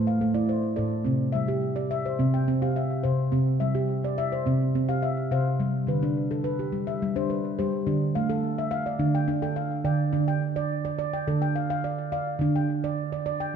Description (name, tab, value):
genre	world meditative, meditative tuned percussion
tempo	106 BPM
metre	4/4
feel	straight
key	D dorian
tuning	A4 = 441 Hz
part	handpan	solo	0.0-13.6 s	A2 to G5	-24 LUFS	equal	tape echo
room	wet recital hall reverb, RT60 1.4 s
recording	dark, warm production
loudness	-24 LUFS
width	side -7 dB against mid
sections	0.0-10.1 A section; 10.1-13.6 B section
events	none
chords	0.0 Am; 1.1 C; 5.6 G; 7.9 Dm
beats	0.49 | 1.05 1.62 2.18 2.75 | 3.32 3.88 4.45 5.02 | 5.59 6.16 6.72 7.29 | 7.86 8.43 8.99 9.56 | 10.13 10.70 11.27 11.83 | 12.40 12.96 13.53